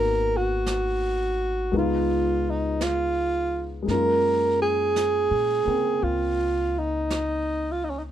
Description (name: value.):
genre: jazz ballad.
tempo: 56 BPM.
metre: 4/4.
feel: swing 68% on 8ths.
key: unclear.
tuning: A4 = 440 Hz.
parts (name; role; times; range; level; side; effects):
warm alto saxophone; melody; 0.0-8.0 s; Db4 to Bb4; -23 LUFS; right 2 dB; none.
warm grand piano; accompaniment; 0.0-8.1 s; Ab3 to Gb4; -30 LUFS; left 4 dB; none.
upright bass; bass; 0.0-8.1 s; Ab1 to Db3; -31 LUFS; equal; none.
jazz brush drum kit; drums; 0.7-8.1 s; brushed snare drum, hi-hat, snare drum; -38 LUFS; right 3 dB; none.
room: light reverb.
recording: minimal, uncompressed stereo recording.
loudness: -22 LUFS.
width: side -11 dB against mid.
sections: 0.0-8.1 A section.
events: none.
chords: 0.0 Abm9; 1.7 Db9; 3.9 Gbmaj9.